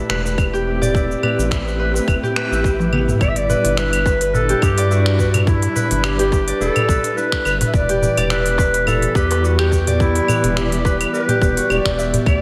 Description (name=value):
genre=organic downtempo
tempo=106 BPM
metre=4/4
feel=swing 54% on 16ths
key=E minor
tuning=A4 = 440 Hz
part: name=dark studio string section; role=sustained chords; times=0.0-12.4 s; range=D3 to D5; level=-28 LUFS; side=equal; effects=sidechain pumping
part: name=Celtic harp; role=arpeggios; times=0.0-12.4 s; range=B3 to E5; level=-24 LUFS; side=equal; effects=tape echo, slapback echo
part: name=round analog bass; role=bass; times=0.1-12.4 s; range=E1 to G2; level=-23 LUFS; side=equal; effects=tube saturation, sidechain pumping
part: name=organic electronic drum kit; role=drums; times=0.1-12.4 s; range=claves, finger snaps, hi-hat, shaker, toms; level=-27 LUFS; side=equal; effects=none
part: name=darbuka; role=percussion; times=0.1-12.2 s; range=none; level=-28 LUFS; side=equal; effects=none
part: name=electronic kick drum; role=drums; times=0.4-12.4 s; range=none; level=-21 LUFS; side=equal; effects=none
part: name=warm clarinet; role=melody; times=3.2-12.4 s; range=E4 to E5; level=-23 LUFS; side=equal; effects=tape echo, slapback echo
room=moderate concert hall reverb, RT60 1.9 s, studio reverb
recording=big arena sound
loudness=-17 LUFS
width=mono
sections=0.0-3.2 A section; 3.2-12.4 B section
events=drum fill 2.8-3.2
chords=0.0 Am7; 3.2 G6; 7.7 Em7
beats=0.38 | 0.94 1.51 2.08 2.64 | 3.21 3.77 4.34 4.91 | 5.47 6.04 6.61 7.17 | 7.74 8.30 8.87 9.44 | 10.00 10.57 11.13 11.70 | 12.27